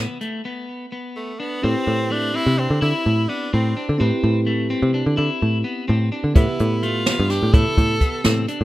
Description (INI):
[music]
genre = progressive instrumental, band music in an uneven meter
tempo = 254 BPM (eighths)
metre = 5/8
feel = straight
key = A minor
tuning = A4 = 440 Hz
[part]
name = electric guitar at the edge of break-up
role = arpeggios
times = 0.0-8.6 s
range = A3 to E4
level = -26 LUFS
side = left 2 dB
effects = digital delay
[part]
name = picked electric bass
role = bass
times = 0.0-8.6 s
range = G2 to D3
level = -19 LUFS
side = equal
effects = none
[part]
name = jazz brush drum kit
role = drums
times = 0.2-0.3, 6.4-8.6 s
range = hi-hat, kick drum, snare drum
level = -18 LUFS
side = equal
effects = none
[part]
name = edgy tenor saxophone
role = melody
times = 1.2-3.9, 6.4-8.5 s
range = A3 to A4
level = -25 LUFS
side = equal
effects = plate reverb, digital delay
[part]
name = bell-like tine electric piano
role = accompaniment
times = 1.6-8.6 s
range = B3 to E5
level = -27 LUFS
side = right 2 dB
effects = plate reverb
[sound]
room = little or no reverb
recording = rough home demo mix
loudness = -17 LUFS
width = side -16 dB against mid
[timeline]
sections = 0.0-1.6 A section; 1.6-8.6 B section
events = break 0.4-1.6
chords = 0.0 N.C.; 1.6 Am7; 6.4 Em